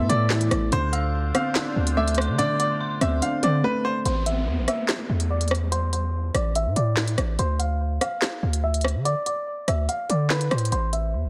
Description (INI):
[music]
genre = hip hop, drill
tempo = 144 BPM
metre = 4/4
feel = half-time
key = A minor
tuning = A4 = 440 Hz
[part]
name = bright grand piano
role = melody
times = 0.0-11.3 s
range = B4 to F5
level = -30 LUFS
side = equal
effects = low-pass filter
[part]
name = dark detuned synth bell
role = second line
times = 0.0-3.2 s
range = C6 to E6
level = -37 LUFS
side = equal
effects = chorus, tape echo
[part]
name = dark concert grand piano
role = accompaniment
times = 0.0-4.1 s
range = A2 to D4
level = -29 LUFS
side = equal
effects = none
[part]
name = clear woodwind section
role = sustained chords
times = 0.0-4.0 s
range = D3 to E5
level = -39 LUFS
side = equal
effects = none
[part]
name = hard-hitting 808-style bass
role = bass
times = 0.0-11.3 s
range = A1 to D3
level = -26 LUFS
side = equal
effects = none
[part]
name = drill drum kit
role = drums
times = 0.1-11.0 s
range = handclaps, hi-hat, rim click, snare drum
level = -29 LUFS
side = equal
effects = vintage 12-bit sampler grit
[part]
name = downlifter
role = sound effects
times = 4.1-7.4 s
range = none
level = -37 LUFS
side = equal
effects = none
[sound]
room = light reverb, small room reverb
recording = none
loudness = -24 LUFS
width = mono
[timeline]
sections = 0.0-4.1 A section; 4.1-11.3 B section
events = drums muted 3.6-4.1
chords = 0.0 Asus2; 0.7 Dm7; 4.1 Am; 7.4 Dm; 10.7 Am